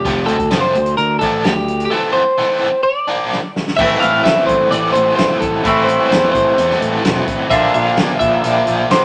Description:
indie rock; 129 BPM; 4/4; straight; A4 = 442 Hz
twelve-string electric guitar; melody; 0.0-9.0 s; G4 to F5; -18 LUFS; equal
biting overdriven guitar; riff; 0.0-9.0 s; E3 to D4; -22 LUFS; equal; tremolo
fuzz picked electric bass; bass; 0.0-9.0 s; E1 to E2; -24 LUFS; equal; overdrive
vintage drum kit; drums; 0.1-9.0 s; crash cymbal, hi-hat, kick drum, snare drum; -23 LUFS; equal
overdriven electric guitar; riff; 3.8-9.0 s; A2 to F4; -22 LUFS; equal
dark analog pad; sustained chords; 8.3-9.0 s; F4 to C6; -30 LUFS; equal; chorus
moderate studio reverb, RT60 0.8 s; nothing above 10.4 kHz; -15 LUFS; mono
0.0-3.8 A section; 3.8-9.0 B section
drum fill 3.3-3.8
0.0 F; 0.8 Dm; 1.9 Am; 2.9 Bb; 3.8 Am; 7.5 Bbadd9

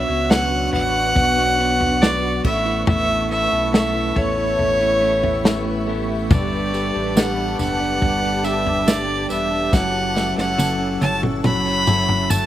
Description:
pop ballad; 70 BPM; 4/4; straight; A4 = 440 Hz
bright fiddle; melody; 0.0-12.5 s; C#5 to B5; -20 LUFS; equal
barky tine electric piano; accompaniment; 0.0-12.5 s; F#3 to E5; -25 LUFS; right 2 dB; medium stereo tremolo
shimmering ambient pad; sustained chords; 0.0-12.5 s; D4 to E6; -29 LUFS; equal; chorus, built-in reverb
clean electric guitar; arpeggios; 0.0-12.5 s; A2 to C#5; -28 LUFS; left 8 dB; slapback echo
sub bass with octave; bass; 0.0-12.5 s; E1 to C#2; -28 LUFS; equal
natural country drum kit; drums; 0.3-12.5 s; crash cymbal, kick drum, snare drum, toms; -19 LUFS; equal
tambourine; percussion; 6.3-12.5 s; -32 LUFS; right 8 dB
little or no reverb; recorded outdoors, with no room sound; -17 LUFS; side -12 dB against mid
0.0-12.5 A section
drum fill 9.7-12.5
0.0 Bmadd9; 2.4 Aadd9; 6.3 Gadd9; 9.7 F#m7

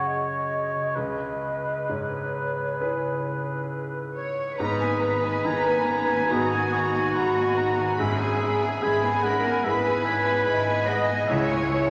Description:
cinematic, emotional film score for orchestra; 64-74 BPM; 4/4; rubato; C# dorian; A4 = 440 Hz
mellow clarinet; second line; 0.0-11.9 s; F#4 to D#5; -33 LUFS; equal
mellow hollow concert flute; second line; 0.0-11.9 s; C#5 to D#6; -34 LUFS; equal
mellow oboe; second line; 0.0-11.9 s; B4 to G#5; -32 LUFS; equal
bright concert grand piano; accompaniment; 0.0-11.9 s; C#2 to C#5; -34 LUFS; equal
concert harp; arpeggios; 0.0-11.9 s; F#2 to G#4; -40 LUFS; equal
rich studio cello section; bass; 4.2-11.9 s; F#4 to D#5; -30 LUFS; equal
warm symphonic violin section; melody; 4.6-11.9 s; E5 to B5; -35 LUFS; equal
rich symphonic violin section; second line; 4.6-11.9 s; B3 to G#4; -40 LUFS; equal
rich symphonic viola section; accompaniment; 4.6-11.9 s; G#3 to C#4; -37 LUFS; equal
dark French horn section; sustained chords; 4.6-11.9 s; B3 to D#5; -35 LUFS; equal
rich symphonic double bass section; bass; 4.6-11.9 s; G#1 to C#2; -35 LUFS; equal
wet scoring stage reverb, RT60 1.9 s; -25 LUFS; mono
0.0-4.6 A section; 4.6-11.9 A section
0.0 F#sus2; 1.0 C#m7; 4.6 G#madd9; 8.0 E/G#; 11.3 C#m

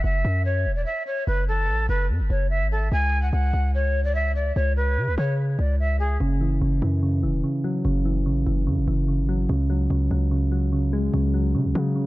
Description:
hip hop; 146 BPM; 4/4; half-time; F# minor; A4 = 438 Hz
breathy jazz flute; melody; 0.0-6.2 s; G#4 to G#5; -26 LUFS; equal; low-pass filter, tape echo
hard-hitting 808-style bass; bass; 0.0-12.1 s; E1 to C#3; -22 LUFS; equal
soft electric-piano-like synth keys; accompaniment; 6.2-12.1 s; C#3 to G#3; -24 LUFS; right 1 dB; chorus, low-pass filter
light reverb, small room reverb; dark, warm production; -21 LUFS; side -18 dB against mid
0.0-12.1 A section
0.0 F#7(no3); 2.9 N.C.; 6.2 F#7(no3); 9.5 C#sus4

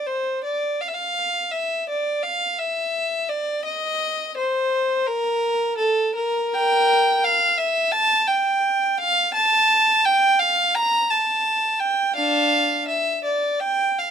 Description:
classical, baroque-style suite movement for unaccompanied violin; 84 BPM; 4/4; rubato; D minor, F major from 6.5 s; A4 = 440 Hz
rich violin; solo; 0.0-14.1 s; D4 to Bb5; -18 LUFS; equal
light reverb; minimal, uncompressed stereo recording; -18 LUFS; side -8 dB against mid
0.0-14.1 A section

